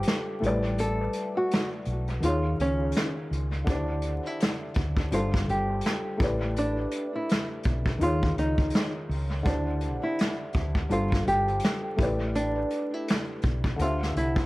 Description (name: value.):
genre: lo-fi hip hop.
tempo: 83 BPM.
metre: 4/4.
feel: swing 58% on 16ths.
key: D minor.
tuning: A4 = 441 Hz.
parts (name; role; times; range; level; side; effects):
nylon-string guitar; melody; 0.0-14.5 s; Db4 to A4; -30 LUFS; equal; low-pass filter, dub echo.
felt-muted upright piano; accompaniment; 0.0-14.5 s; D3 to E5; -32 LUFS; left 1 dB; low-pass filter, dub echo.
woody fretless electric bass; bass; 0.0-14.5 s; G1 to Eb2; -29 LUFS; equal; none.
vintage brush drum kit; drums; 0.0-14.5 s; hi-hat, kick drum, snare drum; -28 LUFS; equal; dub echo.
room: light reverb, small room ambience.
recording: echo-heavy mix, vinyl crackle.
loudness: -25 LUFS.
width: side -19 dB against mid.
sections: 0.0-14.5 A section.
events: break 0.0-3.7.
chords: 0.4 A9sus4; 2.2 Eb9sus4; 3.7 D9sus4; 5.1 G9sus4; 6.2 A9sus4; 8.0 Eb9sus4; 9.5 D9sus4; 10.9 G9sus4; 12.0 A9sus4; 13.8 D9sus4.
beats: 0.06 | 0.78 1.50 2.23 2.95 | 3.67 4.39 5.12 5.84 | 6.56 7.29 8.01 8.73 | 9.45 10.18 10.90 11.62 | 12.35 13.07 13.79.